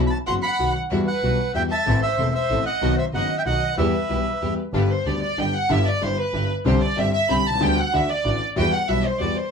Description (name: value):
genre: tango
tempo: 188 BPM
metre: 3/4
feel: rubato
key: E harmonic minor, G major from 4.7 s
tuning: A4 = 440 Hz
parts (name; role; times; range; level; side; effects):
- warm concert grand piano; accompaniment; 0.0-9.3 s; E1 to A4; -25 LUFS; left 3 dB; none
- clear studio string section; stabs; 0.0-9.3 s; G3 to A4; -34 LUFS; equal; none
- warm double bass; bass; 0.0-9.3 s; E1 to E2; -25 LUFS; right 1 dB; none
- bandoneon; melody; 0.1-4.5 s; E5 to C6; -25 LUFS; right 2 dB; none
- warm symphonic violin section; second line; 0.3-9.5 s; B4 to B5; -24 LUFS; right 1 dB; none
room: wet small room reverb, RT60 0.5 s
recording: band playing live in one room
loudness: -19 LUFS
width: side -6 dB against mid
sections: 0.0-4.7 A section; 4.7-9.5 B section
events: violin section solo 4.7-9.5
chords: 0.0 Bsus4; 0.6 B; 0.9 Emadd9; 1.9 Am; 2.8 B; 3.8 Em; 4.7 G; 5.7 Em7/G; 6.7 Csus2; 7.6 G/D; 7.9 Dadd9; 8.6 Emadd9